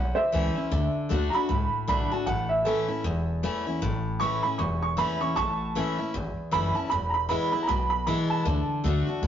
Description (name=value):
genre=rockabilly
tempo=155 BPM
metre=4/4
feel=swing 60% on 8ths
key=A major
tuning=A4 = 438 Hz
part: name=dark upright piano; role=melody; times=0.0-9.3 s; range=A4 to C#6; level=-27 LUFS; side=right 3 dB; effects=none
part: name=picked steel-string acoustic guitar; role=accompaniment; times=0.0-9.3 s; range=E2 to F#4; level=-28 LUFS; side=left 2 dB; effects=none
part: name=upright bass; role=bass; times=0.0-9.3 s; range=E1 to D2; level=-30 LUFS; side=equal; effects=none
room=moderate stone room reverb, RT60 1.1 s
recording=rough rehearsal-room recording, tube saturation, nothing above 7.5 kHz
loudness=-24 LUFS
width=side -9 dB against mid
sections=0.0-9.3 A section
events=upright piano solo 0.0-9.3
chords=0.0 A; 0.7 D; 2.3 A; 6.9 E; 8.5 D